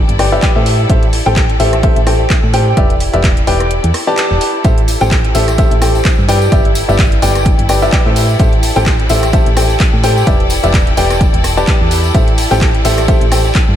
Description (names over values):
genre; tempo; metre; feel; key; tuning
piano house; 128 BPM; 4/4; swing 56% on 16ths; A minor; A4 = 440 Hz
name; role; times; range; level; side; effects
solid FM bass; bass; 0.0-13.8 s; E1 to A2; -15 LUFS; equal; sidechain pumping
bright studio string section; texture; 0.0-13.8 s; E4 to G5; -22 LUFS; left 1 dB; sidechain pumping
garage drum kit; drums; 0.1-13.7 s; handclaps, hi-hat, ride cymbal, rim click; -21 LUFS; equal; none
clear upright piano; riff; 0.2-13.5 s; G4 to A5; -15 LUFS; left 1 dB; sidechain pumping, ping-pong delay
electronic kick drum; drums; 0.4-13.7 s; none; -13 LUFS; equal; none
tambourine; percussion; 4.6-13.7 s; none; -27 LUFS; left 4 dB; none
room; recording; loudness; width
light reverb; none; -9 LUFS; side -10 dB against mid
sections
0.0-13.8 A section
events
kick drops out 3.7-4.6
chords
0.0 G6; 0.7 Am7; 2.8 Em7; 4.6 Am7; 6.3 G6; 8.2 Am7; 10.3 Em7; 12.1 Am7